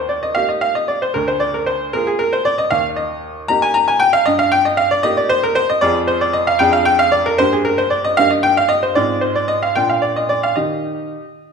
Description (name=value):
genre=classical-period piano sonatina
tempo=76 BPM (dotted quarters)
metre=6/8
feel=straight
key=Eb major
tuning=A4 = 435 Hz
part: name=bright baby grand piano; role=solo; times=0.0-11.5 s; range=D2 to Bb5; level=-14 LUFS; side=equal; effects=none
room=moderate recital hall reverb, RT60 1.5 s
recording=minimal, uncompressed stereo recording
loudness=-14 LUFS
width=side -6 dB against mid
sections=0.0-11.5 A section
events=none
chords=0.0 Eb; 1.1 Bb7/D; 2.7 Eb; 4.3 Eb/G; 5.8 Fm; 6.6 Ddim/F; 7.4 Gm; 8.2 Eb/G; 9.0 Fm/Ab; 9.8 Bb; 10.6 Eb